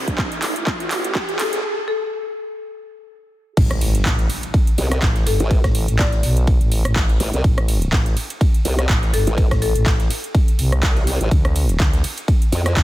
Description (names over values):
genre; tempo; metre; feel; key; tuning
bass house; 124 BPM; 4/4; swing 56% on 16ths; A minor; A4 = 438 Hz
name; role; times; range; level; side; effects
growling FM bass; bass; 0.0-12.8 s; G1 to D2; -20 LUFS; equal; overdrive, sidechain pumping, high-pass filter
riser and impact; sound effects; 0.0-5.5 s; none; -28 LUFS; right 2 dB; none
big-room dance drum kit; drums; 0.1-12.8 s; cabasa, crash cymbal, handclaps, hi-hat, rim click; -24 LUFS; right 1 dB; studio reverb
electronic kick drum; drums; 0.1-12.8 s; none; -17 LUFS; equal; studio reverb
marimba with hard mallets; melody; 1.4-2.4, 5.3-10.1 s; A4 to D5; -26 LUFS; left 6 dB; dub echo
breakbeat sampler-style drum kit; drums; 3.6-12.8 s; ride cymbal, snare drum; -35 LUFS; right 1 dB; sidechain pumping on cymbals, high-pass filter on cymbals, studio reverb, high-pass filter on snare
formant-sweep wobble bass; bass; 4.8-12.7 s; A1 to F2; -19 LUFS; equal; chorus, sidechain pumping
room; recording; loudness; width
little or no reverb; dense, heavily limited modern master, high-pass filter; -16 LUFS; side -15 dB against mid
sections
0.0-3.6 A section; 3.6-12.8 B section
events
build-up 0.0-3.6; drum fill 0.0-1.6; riser 0.0-1.6; filter sweep 0.0-3.6; break 1.6-3.6; drop 3.6-12.8; impact 3.6-5.5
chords
0.0 N.C.; 3.6 Am; 11.3 Dm